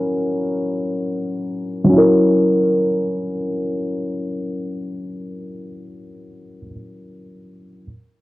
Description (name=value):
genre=hip hop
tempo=free time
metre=none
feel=none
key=unclear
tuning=A4 = 440 Hz
part: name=felt-muted upright piano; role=accompaniment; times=0.0-7.8 s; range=F#3 to A#4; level=-18 LUFS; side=equal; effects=low-pass filter
room=moderate studio reverb, RT60 0.5 s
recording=dry, gritty hardware recording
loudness=-17 LUFS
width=side -17 dB against mid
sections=0.0-1.9 A section; 1.9-5.3 B section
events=filter sweep on felt piano 0.0-1.9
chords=0.0 F#7